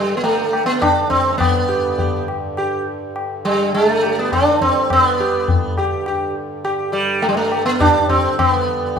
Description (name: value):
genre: indian classical, Hindustani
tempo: 103 BPM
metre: 3/4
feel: straight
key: G raga bilaval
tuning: A4 = 440 Hz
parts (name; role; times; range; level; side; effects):
- sitar; melody; 0.0-9.0 s; G3 to G4; -16 LUFS; right 2 dB; none
- hand-pumped harmonium; drone; 0.0-9.0 s; G2 to D3; -28 LUFS; equal; none
- tabla; percussion; 0.2-9.0 s; none; -21 LUFS; left 4 dB; none
room: wet recital hall reverb, RT60 1.6 s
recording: minimal, uncompressed stereo recording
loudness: -15 LUFS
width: side -6 dB against mid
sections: 0.0-8.4 A section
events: none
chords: none